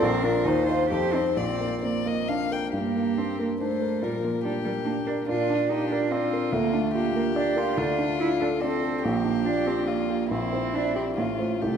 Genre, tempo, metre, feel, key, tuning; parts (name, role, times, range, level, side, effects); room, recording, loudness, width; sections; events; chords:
quick classical-period movement for piano trio; 142 BPM; 3/4; rubato; G minor, F major from 7.8 s; A4 = 440 Hz
rich violin; melody; 0.0-11.8 s; E4 to G5; -30 LUFS; left 7 dB
warm cello; second line; 0.0-11.8 s; F3 to G4; -27 LUFS; right 5 dB
warm grand piano; accompaniment; 0.0-11.8 s; A1 to D5; -27 LUFS; equal
wet concert hall reverb, RT60 1.9 s; -23 LUFS; side -7 dB against mid
0.0-2.7 A section; 2.7-11.8 B section
0.0 Bb; 0.5 Cm/Eb; 0.9 Fsus2; 1.4 Bb; 2.7 Gm; 4.0 Gm/Bb; 5.3 Bb; 6.5 Bb/D; 7.8 Dm; 9.0 Gm7/Bb; 10.3 C7/Bb; 11.2 F/A